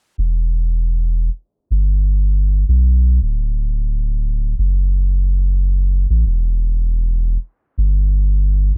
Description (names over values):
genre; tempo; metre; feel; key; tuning
trip hop; 79 BPM; 4/4; swing 57% on 16ths; E minor; A4 = 440 Hz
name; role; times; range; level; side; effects
soft dub sub bass; bass; 0.2-8.8 s; D1 to B1; -17 LUFS; equal; transformer saturation
room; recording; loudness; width
little or no reverb; dry, gritty hardware recording, low-pass filter; -18 LUFS; mono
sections
0.2-8.8 A section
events
filter sweep 0.2-8.8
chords
none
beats
| 0.18 0.94 1.70 2.46 | 3.22 3.98 4.74 5.50 | 6.26 7.02 7.78 8.54